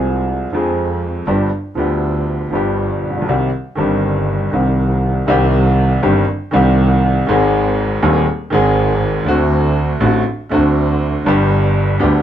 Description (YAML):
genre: tango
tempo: 120 BPM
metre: 4/4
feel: rubato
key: C minor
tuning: A4 = 440 Hz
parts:
  - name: warm upright piano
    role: accompaniment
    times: 0.0-12.2 s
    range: Eb1 to Ab4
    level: -15 LUFS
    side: left 1 dB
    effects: none
  - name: bright double bass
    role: bass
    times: 0.0-12.2 s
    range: G1 to F2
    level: -18 LUFS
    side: right 2 dB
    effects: none
room: light reverb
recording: dark, warm production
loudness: -13 LUFS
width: side -10 dB against mid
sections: 0.0-5.3 A section; 5.3-12.2 A section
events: none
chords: 0.0 Fm; 1.3 G7; 3.3 Cm; 7.3 Ab; 9.3 D7; 11.3 G